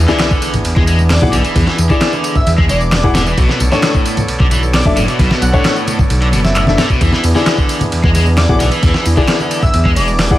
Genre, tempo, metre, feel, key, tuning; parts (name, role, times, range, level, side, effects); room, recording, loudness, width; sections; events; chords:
breakbeat, breaks; 132 BPM; 4/4; straight; A4 = 440 Hz
overdriven tonewheel organ; sustained chords; 0.0-10.4 s; E3 to D5; -22 LUFS; right 2 dB; sidechain pumping
dark detuned saw bass; bass; 0.0-10.4 s; E1 to E2; -14 LUFS; equal
sub drop; sound effects; 0.0-1.6 s; -25 LUFS; equal
cranked stack guitar; riff; 0.1-10.1 s; A2 to G#3; -19 LUFS; equal; overdrive, ping-pong delay
warm grand piano; stabs; 0.1-10.4 s; D4 to F#5; -20 LUFS; left 4 dB; ping-pong delay
dusty soul sampler-style drum kit; drums; 0.1-10.4 s; hi-hat, kick drum, ride cymbal, snare drum; -15 LUFS; equal; studio reverb
punchy analog drum machine; drums; 0.1-10.3 s; handclaps, ride cymbal, tambourine; -24 LUFS; equal; overdrive, studio reverb
congas; percussion; 0.1-10.4 s; -22 LUFS; left 1 dB
airy dreamy lead; melody; 1.1-10.4 s; D5 to F#5; -22 LUFS; equal; chorus, small speaker sound, ping-pong delay
digital ambience; vinyl crackle; -10 LUFS; side -15 dB against mid
0.0-10.4 A section
impact 0.0-1.6
0.0 E7; 3.4 Bm9; 7.0 E7